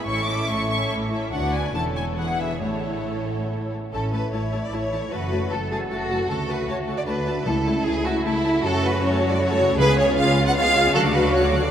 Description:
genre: classical, dramatic, fast romantic movement for symphony orchestra.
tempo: 134-158 BPM.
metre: 3/4.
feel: rubato.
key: A major, F# minor from 8.6 s.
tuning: A4 = 440 Hz.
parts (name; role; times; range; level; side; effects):
warm symphonic violin section; melody; 0.0-11.7 s; C#5 to F#6; -31 LUFS; left 2 dB; none.
warm symphonic violin section; second line; 0.0-11.7 s; E4 to F#5; -24 LUFS; right 1 dB; none.
warm symphonic viola section; accompaniment; 0.0-11.7 s; F#3 to A4; -30 LUFS; left 3 dB; none.
mellow French horn section; sustained chords; 0.0-11.7 s; F#3 to F#4; -29 LUFS; right 1 dB; none.
concert harp; arpeggios; 0.0-11.7 s; F#2 to A5; -29 LUFS; right 1 dB; none.
dark chamber double bass section; bass; 0.1-11.7 s; E1 to F#2; -28 LUFS; equal; none.
warm symphonic cello section; bass; 0.1-11.7 s; D2 to A4; -29 LUFS; equal; none.
timpani; percussion; 7.5-10.3 s; C#3; -33 LUFS; equal; none.
room: wet cathedral reverb, RT60 6.5 s.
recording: in a vast, echoing space.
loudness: -20 LUFS.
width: side -9 dB against mid.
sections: 0.0-3.9 A section; 3.9-11.7 B section.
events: none.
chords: 0.1 A; 1.3 Bm/D; 1.7 A/E; 2.2 E; 2.6 A; 5.1 F#m; 6.3 D; 7.5 A/C#; 8.6 F#m; 9.8 C#7; 10.9 D.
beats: | 0.07 0.49 0.91 | 1.33 1.75 2.17 | 2.62 3.06 3.50 | 3.93 4.33 4.72 | 5.12 5.51 5.90 | 6.29 6.68 7.07 | 7.47 7.86 8.25 | 8.64 9.02 9.40 | 9.79 10.17 10.56 | 10.95 11.33.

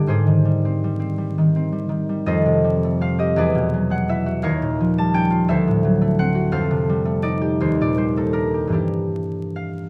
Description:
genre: classical, solo harp piece.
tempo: 55 BPM (dotted quarters).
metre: 6/8.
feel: uneven beats, rubato.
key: unclear.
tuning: A4 = 442 Hz.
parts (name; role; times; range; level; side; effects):
concert harp; solo; 0.0-9.9 s; D2 to A5; -20 LUFS; equal; none.
room: moderate stone room reverb, RT60 1.1 s.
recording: dark, warm production, vinyl crackle.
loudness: -20 LUFS.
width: mono.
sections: 0.0-9.9 A section.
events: none.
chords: 0.1 Abmaj7; 2.3 F9; 3.3 E9; 4.4 Eb9; 5.5 D9; 6.5 F9; 7.6 Ebmaj7; 8.7 Gm6.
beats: | 0.07 1.17 | 2.27 3.35 | 4.42 5.48 | 6.52 7.59 | 8.72.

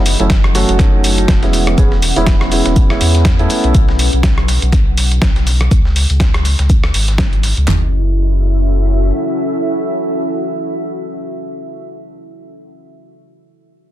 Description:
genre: deep house.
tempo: 122 BPM.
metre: 4/4.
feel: swing 57% on 16ths.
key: F# dorian.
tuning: A4 = 440 Hz.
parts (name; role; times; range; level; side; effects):
deep dark ambient pad; sustained chords; 0.0-12.3 s; E3 to F#5; -22 LUFS; equal; chorus, built-in reverb, sidechain pumping.
warm sub bass; bass; 0.0-9.1 s; E1 to E2; -14 LUFS; equal; tube saturation, sidechain pumping.
dusty soul sampler-style drum kit; drums; 0.1-7.7 s; hi-hat, rim click, snare drum; -19 LUFS; equal; none.
dusty soul sampler-style drum kit; drums; 0.1-7.6 s; hi-hat, shaker, snare drum; -29 LUFS; left 1 dB; sidechain pumping on perc, high-pass filter on perc, high-pass filter on snare, sidechain pumping on hats, high-pass filter on hats.
felt-muted upright piano; stabs; 0.2-3.7 s; F#3 to G#4; -17 LUFS; right 2 dB; sidechain pumping, ping-pong delay.
deep house drum kit; drums; 0.3-7.8 s; handclaps, kick drum, snare drum, toms; -13 LUFS; equal; none.
room: digital ambience.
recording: dense, heavily limited modern master.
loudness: -11 LUFS.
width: side -13 dB against mid.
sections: 0.0-7.7 A section; 7.7-11.6 B section.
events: filter sweep on ambient pad 0.0-7.7.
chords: 0.0 F#m7; 1.5 E6; 3.5 B7sus2; 5.7 C#m9; 7.7 F#m7.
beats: 0.30 0.80 1.29 | 1.78 2.27 2.76 3.25 | 3.75 4.24 4.73 5.22 | 5.71 6.21 6.70 7.19 | 7.68 8.17 8.66 9.15 | 9.65 10.14 10.63 11.12.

